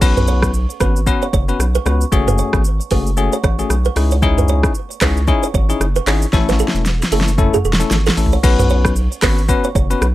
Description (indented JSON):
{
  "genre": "afrobeats",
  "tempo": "114 BPM",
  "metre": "4/4",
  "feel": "swing 58% on 16ths",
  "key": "unclear",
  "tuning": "A4 = 440 Hz",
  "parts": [
    { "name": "bell-like tine electric piano", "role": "accompaniment", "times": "0.0-10.1 s", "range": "A3 to B4", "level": "-20 LUFS", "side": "left 5 dB", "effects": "none" },
    { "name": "round analog bass", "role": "bass", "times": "0.0-10.1 s", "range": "E1 to C#2", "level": "-17 LUFS", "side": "equal", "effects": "none" },
    { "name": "deep house drum kit", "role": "drums", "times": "0.0-10.1 s", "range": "crash cymbal, handclaps, hi-hat, kick drum, rim click, shaker, snare drum, toms", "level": "-17 LUFS", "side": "equal", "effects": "none" },
    { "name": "kalimba", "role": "riff", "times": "0.2-9.8 s", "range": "G#4 to C#5", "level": "-23 LUFS", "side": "right 8 dB", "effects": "digital delay" }
  ],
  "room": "little or no reverb",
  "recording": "dark, warm production",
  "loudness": "-13 LUFS",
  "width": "side -15 dB against mid",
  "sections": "0.0-8.4 A section; 8.4-10.1 B section",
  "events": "drum fill 6.3-8.4",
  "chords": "0.0 Bsus2; 2.1 F#madd9; 4.0 C#madd9; 6.3 A; 8.4 Bsus2"
}